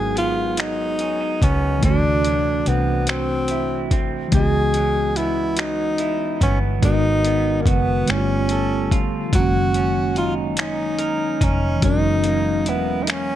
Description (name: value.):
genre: slow six-eight R&B.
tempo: 48 BPM (dotted quarters).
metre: 6/8.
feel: straight.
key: unclear.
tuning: A4 = 439 Hz.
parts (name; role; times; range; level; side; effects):
breathy tenor saxophone; melody; 0.0-13.4 s; A#3 to G#4; -22 LUFS; equal; none.
electric guitar through a small old amp; second line; 0.0-13.4 s; G#2 to A#4; -29 LUFS; right 5 dB; none.
mellow tine electric piano; accompaniment; 0.0-13.4 s; C3 to D#5; -25 LUFS; equal; medium stereo tremolo.
vintage muted fingered electric bass; bass; 0.0-13.4 s; E1 to D2; -23 LUFS; equal; none.
dusty soul sampler-style drum kit; drums; 0.2-13.3 s; finger snaps, hi-hat, kick drum; -22 LUFS; equal; none.
room: little or no reverb.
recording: none.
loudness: -17 LUFS.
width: side -12 dB against mid.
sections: 0.0-13.4 A section.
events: none.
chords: 0.0 G#m7; 1.8 D9; 4.3 C#m11; 6.8 G#m9; 8.1 G9; 9.3 F#6; 11.8 F#9.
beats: 0.58 | 1.83 3.08 | 4.33 5.58 | 6.83 8.08 | 9.33 10.58 | 11.83 13.08.